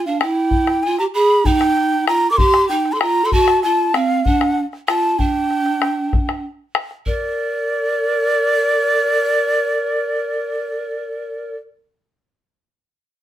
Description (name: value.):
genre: andean folk, Andean ensemble.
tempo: 64 BPM (dotted quarters).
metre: 6/8.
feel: straight.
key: unclear.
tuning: A4 = 435 Hz.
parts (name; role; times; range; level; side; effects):
breathy mellow large quena; melody; 0.0-11.6 s; D5 to D6; -18 LUFS; equal; none.
breathy mellow pan flute; second line; 0.0-11.6 s; C4 to Bb4; -20 LUFS; right 2 dB; none.
bombo; percussion; 0.2-7.4 s; none; -20 LUFS; left 2 dB; none.
room: moderate studio reverb, RT60 0.6 s.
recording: none.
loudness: -15 LUFS.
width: side -12 dB against mid.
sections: 0.0-7.1 A section; 7.1-10.8 B section.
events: none.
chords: none.